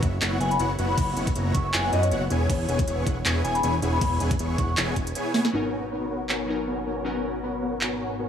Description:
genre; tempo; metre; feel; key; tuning
future bass; 158 BPM; 4/4; swing 56% on 16ths, half-time; G# minor; A4 = 439 Hz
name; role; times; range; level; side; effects
dense compressed supersaw; riff; 0.0-8.3 s; B3 to C#6; -28 LUFS; equal; sidechain pumping, low-pass filter, digital delay
fat analog bass; bass; 0.0-8.3 s; E1 to F#2; -28 LUFS; equal; sidechain pumping
electronic kick drum; drums; 0.0-5.0 s; none; -26 LUFS; equal; overdrive
trap drum kit; drums; 0.0-7.9 s; crash cymbal, handclaps, hi-hat, snare drum; -28 LUFS; right 1 dB; overdrive
vibraphone with medium mallets; melody; 0.4-4.7 s; C#5 to C#6; -28 LUFS; left 2 dB; sidechain pumping, digital delay
glassy digital keys; accompaniment; 5.5-8.3 s; F#3 to A#4; -31 LUFS; left 4 dB; chorus, sidechain pumping, digital delay
room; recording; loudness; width
light reverb, digital ambience; none; -22 LUFS; side -8 dB against mid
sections
0.0-5.5 A section; 5.5-8.3 B section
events
drop 0.0-5.5; drum fill 5.3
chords
0.0 F#7sus4; 2.3 E6; 5.5 G#m11

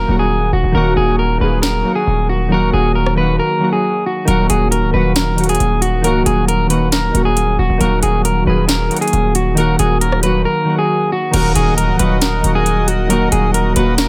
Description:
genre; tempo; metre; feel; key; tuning
hip hop, trap; 136 BPM; 4/4; half-time; Eb minor; A4 = 441 Hz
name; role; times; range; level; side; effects
electric guitar at the edge of break-up; melody; 0.0-14.1 s; Gb4 to Cb5; -20 LUFS; equal; low-pass filter
glassy digital keys; accompaniment; 0.0-14.1 s; Eb3 to Ab4; -20 LUFS; equal; chorus, low-pass filter
hard-hitting 808-style bass; bass; 0.0-14.1 s; Db1 to Eb1; -20 LUFS; equal; none
trap drum kit; drums; 1.6-14.1 s; crash cymbal, hi-hat, rim click, snare drum; -22 LUFS; equal; none
accordion; sustained chords; 11.3-14.1 s; Bb4 to Eb6; -28 LUFS; equal; light tremolo tuning
impact; sound effects; 11.3-13.1 s; none; barely audible; none; none
room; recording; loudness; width
digital ambience; none; -15 LUFS; mono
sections
0.0-11.3 A section; 11.3-14.1 B section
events
break 0.0-4.3; drums muted 10.5-11.3; impact 11.3-13.1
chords
0.0 Ebm

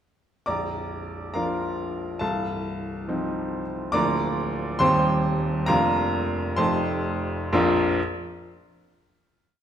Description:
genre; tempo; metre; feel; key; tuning
classical, virtuoso piano study; 62-70 BPM (dotted quarters); 6/8; rubato; Bb major; A4 = 440 Hz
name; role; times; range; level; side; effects
clear baby grand piano; solo; 0.5-8.0 s; Bb0 to D6; -23 LUFS; equal; none
room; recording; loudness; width
wet recital hall reverb, RT60 1.4 s; none; -22 LUFS; side -9 dB against mid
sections
0.5-7.5 A section; 7.5-9.4 final chord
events
slowing down 3.1-7.5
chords
0.5 Bb; 2.2 F7/C; 3.9 Bb/D; 4.8 Cm/Eb; 5.7 Bb/F; 6.6 F9; 7.5 Bb

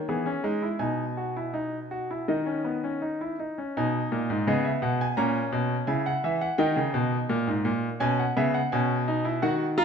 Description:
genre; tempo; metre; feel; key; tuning
classical, baroque-style 3-part fugue for grand piano; 84 BPM; 4/4; straight; G# minor; A4 = 441 Hz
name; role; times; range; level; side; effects
bright concert grand piano; solo; 0.0-9.8 s; G#2 to A#5; -24 LUFS; equal; none
room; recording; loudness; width
wet recital hall reverb, RT60 1.3 s; none; -25 LUFS; side -6 dB against mid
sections
0.0-3.7 A section; 3.7-9.8 B section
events
none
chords
0.0 A#dim (rootless); 0.8 G#m/B; 2.3 C#sus2/D#; 3.7 G#m; 5.2 A#m7b5; 6.6 D#; 8.0 G#m/B

